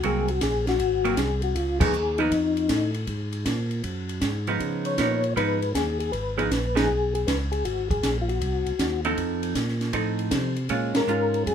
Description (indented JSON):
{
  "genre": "soul jazz organ trio",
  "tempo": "158 BPM",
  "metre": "4/4",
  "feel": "swing 66% on 8ths",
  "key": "Ab mixolydian",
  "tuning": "A4 = 440 Hz",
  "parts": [
    { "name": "percussive tonewheel organ", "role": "melody", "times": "0.0-11.5 s", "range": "Eb4 to Db5", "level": "-26 LUFS", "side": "left 4 dB", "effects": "slow rotary speaker, chorus vibrato" },
    { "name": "vintage hollow-body jazz guitar", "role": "accompaniment", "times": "0.0-11.5 s", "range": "F3 to A4", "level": "-27 LUFS", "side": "right 4 dB", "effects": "none" },
    { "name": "tonewheel organ", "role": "bass", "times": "0.0-11.5 s", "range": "Ab1 to Db3", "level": "-28 LUFS", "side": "equal", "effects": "overdrive, slow rotary speaker" },
    { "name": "compact cocktail drum kit", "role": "drums", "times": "0.0-11.5 s", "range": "crash cymbal, hi-hat, kick drum, ride cymbal, snare drum", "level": "-29 LUFS", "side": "right 1 dB", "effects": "none" }
  ],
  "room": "moderate club reverb, RT60 0.5 s",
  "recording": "minimal, uncompressed stereo recording",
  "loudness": "-22 LUFS",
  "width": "side -8 dB against mid",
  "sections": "0.0-11.5 A section",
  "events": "band accent 1.7, 6.7, 10.9",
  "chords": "0.0 Ab9; 1.6 Db9; 3.1 Absus2; 4.6 Db9; 7.7 Ab9; 9.2 F7; 10.7 Bbm7"
}